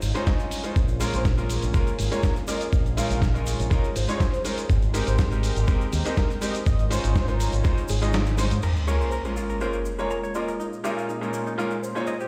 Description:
nu-disco, nu disco; 122 BPM; 4/4; straight; A4 = 439 Hz
lush unison pad; sustained chords; 0.0-12.3 s; Bb2 to Eb5; -37 LUFS; equal; chorus, sidechain pumping
fingered electric bass with an envelope filter; bass; 0.0-8.6 s; Ab1 to Ab2; -27 LUFS; equal
dusty soul sampler-style drum kit; drums; 0.0-8.7 s; cabasa, crash cymbal, hi-hat, snare drum; -35 LUFS; equal
egg shaker; percussion; 0.0-12.3 s; -48 LUFS; equal
bright grand piano; accompaniment; 0.1-12.1 s; Bb2 to Eb5; -32 LUFS; equal; sidechain pumping, tape echo
electronic kick drum; drums; 0.3-7.8 s; -25 LUFS; equal
unison lead; melody; 1.1-12.3 s; Ab4 to F5; -37 LUFS; equal; lush chorus, analog delay
direct-recorded clean electric guitar; riff; 8.6-12.3 s; Bb3 to Bb5; -37 LUFS; equal; subtle chorus, low-pass filter, tape echo
sub drop; sound effects; 8.6-10.6 s; -30 LUFS; equal
light reverb, digital ambience; played on a big sound system in a bare room, stone room reverb; -24 LUFS; mono
0.0-8.6 A section; 8.6-12.3 B section
kick drops out 8.1-8.6; band accent 8.1; impact 8.6-10.6
0.0 Dbmaj9/Ab; 0.8 Bbm7; 2.7 Eb9sus4/Bb; 4.7 Abmaj9; 6.7 Dbmaj9/Ab; 8.6 Bbm7; 10.6 Eb9sus4/Bb
0.27 | 0.76 1.25 1.75 2.24 | 2.73 3.22 3.71 4.21 | 4.70 5.19 5.68 6.17 | 6.66 7.16 7.65 8.14 | 8.63 9.12 9.62 10.11 | 10.60 11.09 11.58 12.07

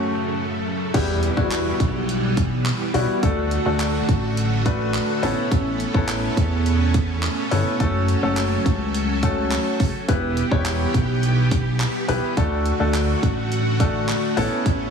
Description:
dance-pop; 105 BPM; 4/4; straight; E dorian; A4 = 440 Hz
clear grand piano; accompaniment; 0.0-14.9 s; G3 to C#5; -24 LUFS; left 3 dB; sidechain pumping
string machine, full ensemble; sustained chords; 0.0-14.9 s; F#2 to A4; -26 LUFS; right 2 dB; ensemble chorus, sidechain pumping
chorused synth bass; bass; 0.9-14.9 s; E1 to E2; -23 LUFS; right 1 dB; sidechain pumping
pop drum kit; drums; 0.9-14.8 s; crash cymbal, handclaps, hi-hat, kick drum; -24 LUFS; right 1 dB
impact; sound effects; 0.9-3.2 s; -33 LUFS; right 4 dB
light reverb, digital ambience; heavily compressed radio sound; -19 LUFS; side -6 dB against mid
0.9-14.9 A section
break 0.0-0.9; drop 0.9-14.9; impact 0.9-3.2
0.0 F#m; 0.9 Em; 3.2 D; 5.2 Aadd9; 7.8 F#m; 10.1 Em; 12.4 D; 14.4 Aadd9
0.37 | 0.94 1.51 2.09 2.66 | 3.23 3.80 4.37 4.94 | 5.51 6.09 6.66 7.23 | 7.80 8.37 8.94 9.52 | 10.09 10.66 11.23 11.80 | 12.37 12.94 13.52 14.09 | 14.66

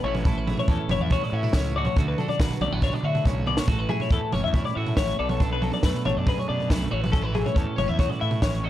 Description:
math rock and midwest emo; 139 BPM; 4/4; straight; A major; A4 = 441 Hz
twelve-string electric guitar; accompaniment; 0.0-8.7 s; F#2 to A4; -29 LUFS; right 5 dB; spring reverb
twelve-string electric guitar; arpeggios; 0.0-8.7 s; G#4 to F#5; -29 LUFS; left 7 dB; wide subtle chorus
fuzz fingered electric bass; bass; 0.0-8.7 s; F#1 to D3; -29 LUFS; equal; overdrive
compact cocktail drum kit; drums; 0.1-8.5 s; kick drum, snare drum, toms; -25 LUFS; equal
light reverb; dark, warm production; -22 LUFS; side -13 dB against mid
0.0-8.7 A section
drum fill 3.3-3.7
0.0 A6; 2.0 D6; 3.7 A6; 5.2 Bm7; 6.9 A69
| 0.24 0.68 1.10 1.53 | 1.97 2.40 2.83 3.26 | 3.69 4.12 4.55 4.98 | 5.41 5.84 6.27 6.70 | 7.13 7.56 7.99 8.42

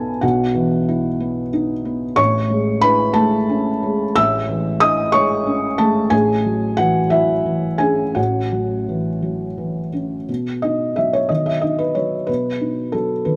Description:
neoclassical minimalist piano; 61 BPM (dotted quarters); 6/8; rubato; A4 = 440 Hz
felt-muted upright piano; solo; 0.0-13.4 s; A1 to E6; -19 LUFS; equal
light reverb; -19 LUFS; mono
0.0-10.3 A section; 10.3-13.4 B section
0.0 Emaj7/B; 2.2 Amaj7; 6.1 F#m7/A; 10.3 B
| 0.23 1.20 | 2.18 3.16 | 4.17 5.14 | 6.12 7.12 | 8.17 9.24 | 10.29 11.30 | 12.28 13.26

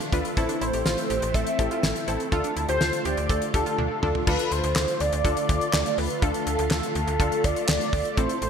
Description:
synth-pop; 123 BPM; 4/4; straight; D minor; A4 = 439 Hz
funky polysynth comp; accompaniment; 0.0-8.5 s; C4 to B4; -31 LUFS; left 2 dB; chorus
soft string machine; sustained chords; 0.0-8.5 s; D3 to F4; -31 LUFS; equal; phaser, ensemble chorus
analog pluck; arpeggios; 0.0-4.2 s; D4 to A4; -33 LUFS; right 6 dB; chorus, ping-pong delay
damped 70s drum kit; drums; 0.0-8.5 s; crash cymbal, handclaps, hi-hat, kick drum, snare drum, toms; -27 LUFS; equal; gated reverb
slap-like FM bass; bass; 0.1-8.5 s; A1 to D2; -29 LUFS; equal
octave-doubled lead; melody; 0.6-8.5 s; A4 to E5; -27 LUFS; equal; chorus, phaser
moderate lush hall reverb, RT60 1.8 s, studio reverb; bright 1980s-style digital production; -22 LUFS; side -7 dB against mid
0.0-4.3 A section; 4.3-8.5 B section
drum fill 3.8-4.3
0.4 Am; 2.3 Dm
| 0.37 0.86 1.34 1.83 | 2.32 2.81 3.30 3.78 | 4.27 4.76 5.25 5.74 | 6.22 6.71 7.20 7.69 | 8.18

